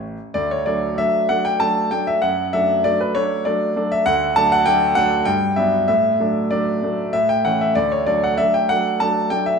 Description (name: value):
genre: classical-period piano sonatina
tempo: 96 BPM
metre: 3/4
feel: rubato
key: D major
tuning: A4 = 441 Hz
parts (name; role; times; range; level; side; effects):
- clear concert grand piano; solo; 0.0-9.6 s; A1 to A5; -16 LUFS; equal; none
room: wet recital hall reverb, RT60 1.4 s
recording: minimal, uncompressed stereo recording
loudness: -16 LUFS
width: side -5 dB against mid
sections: 0.4-9.6 A section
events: none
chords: 0.4 D; 2.2 D/F#; 4.1 D; 5.3 Gmaj7; 5.9 D/A; 7.1 A; 7.8 D